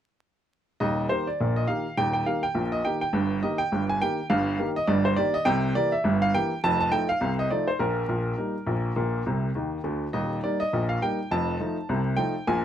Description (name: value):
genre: ragtime piano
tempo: 103 BPM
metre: 2/4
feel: swing 58% on 16ths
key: Eb major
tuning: A4 = 440 Hz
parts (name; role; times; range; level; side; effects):
- clear upright piano; solo; 0.8-12.6 s; Eb1 to A5; -23 LUFS; equal; none
room: light reverb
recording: close, detailed microphones, vinyl crackle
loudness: -23 LUFS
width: side -10 dB against mid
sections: 0.8-12.6 A section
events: upright piano fill 9.3-10.1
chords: 0.8 Eb; 3.1 Eb/G; 5.5 C7; 6.6 F7; 7.8 Eb/Bb; 9.0 Bb; 10.1 Eb; 11.3 F7